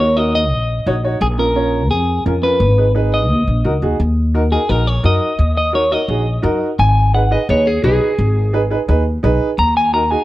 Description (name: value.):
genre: latin.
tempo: 172 BPM.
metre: 4/4.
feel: straight.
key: Eb minor.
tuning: A4 = 441 Hz.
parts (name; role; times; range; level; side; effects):
clean electric guitar; melody; 0.0-10.2 s; Ab4 to Bb5; -17 LUFS; left 1 dB; spring reverb.
clear upright piano; accompaniment; 0.0-10.2 s; Db4 to Db5; -20 LUFS; right 2 dB; none.
upright bass; bass; 0.0-10.1 s; Ab1 to Gb2; -16 LUFS; equal; none.
room: light reverb.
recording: dark, warm production.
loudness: -13 LUFS.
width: side -16 dB against mid.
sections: 0.0-4.0 A section; 4.0-10.2 B section.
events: clean electric guitar solo 4.0-10.2.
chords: 0.0 Ebm; 1.2 Bbm; 2.6 Abm; 3.3 Ebm; 6.8 Abm; 9.6 Ebm.